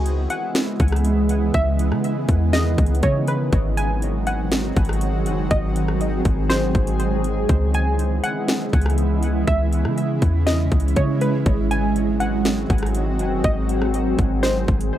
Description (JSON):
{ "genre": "hip hop, atmospheric cloud-rap", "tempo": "121 BPM", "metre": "4/4", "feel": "half-time", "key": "C# minor", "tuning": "A4 = 440 Hz", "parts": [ { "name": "warbly dusty pluck", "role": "melody", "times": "0.0-15.0 s", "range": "B4 to G#5", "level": "-27 LUFS", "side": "equal", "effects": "chorus, low-pass filter, dub echo" }, { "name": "shimmering ambient pad", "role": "sustained chords", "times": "0.0-15.0 s", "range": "C#3 to G#4", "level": "-23 LUFS", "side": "right 1 dB", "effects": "chorus, built-in reverb, sidechain pumping" }, { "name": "clean 808-style bass", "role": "bass", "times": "0.0-14.9 s", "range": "F#1 to C#3", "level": "-21 LUFS", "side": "equal", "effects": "none" }, { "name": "trap drum kit", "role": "drums", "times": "0.1-14.9 s", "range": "hi-hat, kick drum, rim click, snare drum", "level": "-22 LUFS", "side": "equal", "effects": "overdrive" } ], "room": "light reverb", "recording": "echo-heavy mix", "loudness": "-18 LUFS", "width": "side -12 dB against mid", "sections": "0.0-15.0 A section", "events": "none", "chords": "0.0 C#m7; 3.5 G#7; 7.5 C#m7; 11.5 G#7" }